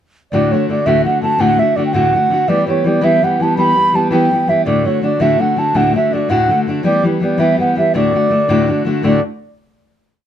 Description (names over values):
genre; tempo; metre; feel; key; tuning
celtic folk, Celtic jig; 110 BPM (dotted quarters); 6/8; straight; D major; A4 = 439 Hz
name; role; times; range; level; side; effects
baroque flute; melody; 0.3-9.2 s; C#5 to B5; -15 LUFS; right 2 dB; plate reverb
fingerpicked steel-string acoustic guitar; accompaniment; 0.3-9.2 s; D2 to G4; -15 LUFS; left 2 dB; none
room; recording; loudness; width
moderate studio reverb, RT60 0.6 s; dark, warm production; -12 LUFS; side -10 dB against mid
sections
0.3-9.0 A section; 9.0-10.1 final chord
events
none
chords
0.3 D; 2.5 Em; 4.7 D; 6.8 Em; 7.9 D